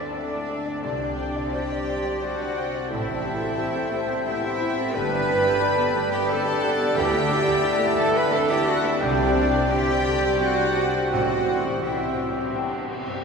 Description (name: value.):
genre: cinematic.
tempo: 88 BPM.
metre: 3/4.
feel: rubato.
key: unclear.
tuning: A4 = 440 Hz.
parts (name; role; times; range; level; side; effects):
dark studio violin section; melody; 0.0-13.0 s; C5 to D5; -34 LUFS; left 5 dB; none.
dark clarinet; second line; 0.0-12.9 s; C5 to D5; -34 LUFS; left 1 dB; none.
hollow small flute group; second line; 0.0-12.9 s; D5 to A5; -34 LUFS; left 1 dB; none.
warm oboe; second line; 0.0-12.9 s; D5 to G5; -33 LUFS; right 2 dB; none.
warm symphonic violin section; second line; 0.0-12.5 s; C5 to B5; -32 LUFS; left 2 dB; none.
felt-muted upright piano; accompaniment; 0.0-13.2 s; A1 to D5; -31 LUFS; left 1 dB; none.
warm studio viola section; accompaniment; 0.0-13.2 s; D3 to G5; -32 LUFS; right 1 dB; none.
dark French horn section; sustained chords; 0.0-12.9 s; G3 to G4; -31 LUFS; left 2 dB; none.
concert harp; arpeggios; 0.0-13.2 s; G2 to D6; -34 LUFS; left 4 dB; none.
warm symphonic cello section; bass; 0.0-12.5 s; C4 to B4; -26 LUFS; right 2 dB; none.
warm chamber double bass section; bass; 0.8-11.7 s; G1 to D2; -33 LUFS; right 2 dB; none.
room: wet cathedral reverb, RT60 7.1 s.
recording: recorded in a church or concert hall.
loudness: -21 LUFS.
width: side -5 dB against mid.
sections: 0.0-13.2 A section.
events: none.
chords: 0.0 Dsus2; 0.8 Csus2; 2.9 Am7; 5.0 Gadd9; 7.0 Dsus2; 9.0 Csus2; 11.1 Am7.